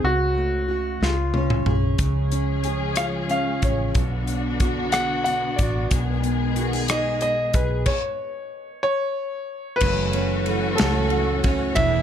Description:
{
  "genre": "six-eight pop ballad",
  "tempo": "61 BPM (dotted quarters)",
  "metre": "6/8",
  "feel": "straight",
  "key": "F# minor",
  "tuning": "A4 = 436 Hz",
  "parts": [
    { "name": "warm concert grand piano", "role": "melody", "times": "0.0-12.0 s", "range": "E#4 to F#5", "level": "-25 LUFS", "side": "left 1 dB", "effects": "none" },
    { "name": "fingerpicked plugged-in steel-string acoustic guitar", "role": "accompaniment", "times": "0.0-12.0 s", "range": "F#2 to G#4", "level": "-27 LUFS", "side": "equal", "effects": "double-tracked left and right" },
    { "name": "vintage muted fingered electric bass", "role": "bass", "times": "0.0-12.0 s", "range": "E1 to C#2", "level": "-26 LUFS", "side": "equal", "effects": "none" },
    { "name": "modern studio drum kit", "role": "drums", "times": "1.0-11.9 s", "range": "crash cymbal, hi-hat, kick drum, ride cymbal, rim click, snare drum, toms", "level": "-24 LUFS", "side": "equal", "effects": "none" },
    { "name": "warm symphonic string section", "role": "sustained chords", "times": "2.0-12.0 s", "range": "D3 to G#4", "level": "-30 LUFS", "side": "left 3 dB", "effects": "none" },
    { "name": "picked steel-string acoustic guitar", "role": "arpeggios", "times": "9.8-12.0 s", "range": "F#2 to G#4", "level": "-28 LUFS", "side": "right 10 dB", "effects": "none" }
  ],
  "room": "light reverb",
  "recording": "dark, warm production",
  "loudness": "-20 LUFS",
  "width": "side -9 dB against mid",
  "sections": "0.0-9.8 A section; 9.8-12.0 B section",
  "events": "drum fill 1.0-2.0; stop 7.9-9.8",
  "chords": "0.0 F#m/C#; 1.0 C#; 4.0 Bm; 5.9 G#m/B; 7.9 N.C.; 9.8 F#m7",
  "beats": "| 0.03 1.01 | 1.99 2.97 | 3.95 4.93 | 5.91 6.89 | 7.87 8.84 | 9.82 10.80 | 11.78"
}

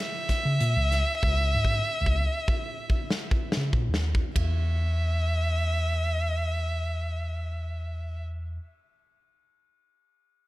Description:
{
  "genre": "progressive instrumental, band music in an uneven meter",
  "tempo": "96 BPM",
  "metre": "5/4",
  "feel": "straight",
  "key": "unclear",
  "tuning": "A4 = 441 Hz",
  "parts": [
    { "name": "rich violin", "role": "melody", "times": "0.0-8.2 s", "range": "E5", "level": "-30 LUFS", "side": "right 1 dB", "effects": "analog delay" },
    { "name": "big rock drum kit", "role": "drums", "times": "0.3-4.5 s", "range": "hi-hat, kick drum, ride cymbal, snare drum", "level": "-28 LUFS", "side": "equal", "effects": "none" },
    { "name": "mellow tine electric piano", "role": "bass", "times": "0.5-8.6 s", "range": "C#2 to C#3", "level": "-26 LUFS", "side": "equal", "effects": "phaser" }
  ],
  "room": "studio reverb",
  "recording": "none",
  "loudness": "-24 LUFS",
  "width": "side -18 dB against mid",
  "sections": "0.0-4.4 A section; 4.4-7.5 B section",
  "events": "drum fill 1.2-4.4",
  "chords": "0.0 C#m; 4.4 N.C.",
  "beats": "0.60 | 1.23 1.85 2.48 3.10 3.73 | 4.35 4.98 5.60 6.23 6.85"
}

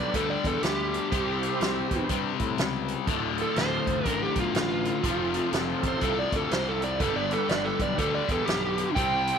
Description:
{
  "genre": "blues rock power trio and southern rock",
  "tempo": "122 BPM",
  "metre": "4/4",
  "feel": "swing 62% on 8ths",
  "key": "unclear",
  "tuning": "A4 = 440 Hz",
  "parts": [
    { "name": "overdriven slide guitar", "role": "melody", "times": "0.0-9.4 s", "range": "F4 to G5", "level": "-29 LUFS", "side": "right 4 dB", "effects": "none" },
    { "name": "overdriven tonewheel organ", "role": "sustained chords", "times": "0.0-9.4 s", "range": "A3 to C5", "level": "-36 LUFS", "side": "right 12 dB", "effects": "slow rotary speaker, chorus vibrato" },
    { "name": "distorted electric guitar", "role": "riff", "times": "0.0-9.4 s", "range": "D2 to C4", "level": "-29 LUFS", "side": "left 12 dB", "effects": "distortion" },
    { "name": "fuzz fingered electric bass", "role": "bass", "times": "0.0-9.3 s", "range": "D1 to A2", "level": "-33 LUFS", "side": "right 1 dB", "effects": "overdrive" },
    { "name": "vintage drum kit", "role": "drums", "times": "0.1-9.4 s", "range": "hi-hat, kick drum, snare drum", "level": "-31 LUFS", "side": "right 1 dB", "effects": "none" }
  ],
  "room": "light reverb, studio ambience",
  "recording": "1960s-style stereo with parts hard left and right",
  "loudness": "-24 LUFS",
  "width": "side -7 dB against mid",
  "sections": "0.0-9.4 A section",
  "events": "none",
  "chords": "0.0 G; 1.1 C; 3.1 Dm; 5.0 F; 7.0 G",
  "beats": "0.14 0.63 | 1.12 1.61 2.10 2.59 | 3.08 3.57 4.06 4.55 | 5.04 5.53 6.02 6.51 | 7.00 7.49 7.98 8.47 | 8.96"
}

